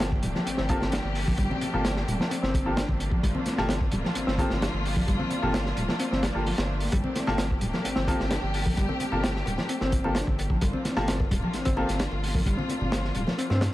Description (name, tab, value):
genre	breakbeat, breaks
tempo	130 BPM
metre	4/4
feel	straight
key	G minor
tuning	A4 = 441 Hz
part	warm studio string section	sustained chords	0.0-13.7 s	F3 to G4	-33 LUFS	equal	sidechain pumping
part	mellow reed electric piano	riff	0.0-13.7 s	F3 to D4	-31 LUFS	left 1 dB	fast tremolo, dub echo
part	saturated sub bass	bass	0.0-13.7 s	D1 to G2	-30 LUFS	equal	none
part	crunchy breakbeat drum kit	drums	0.0-13.7 s	hi-hat, kick drum, snare drum	-28 LUFS	equal	none
part	congas and bongos	percussion	0.2-13.6 s	none	-37 LUFS	left 2 dB	none
part	warm baby grand piano	stabs	0.7-11.9 s	Bb3 to A4	-33 LUFS	left 1 dB	dub echo
room	light reverb, small room ambience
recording	echo-heavy mix, vinyl crackle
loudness	-24 LUFS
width	side -16 dB against mid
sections	0.0-13.7 A section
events	none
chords	0.0 Gm9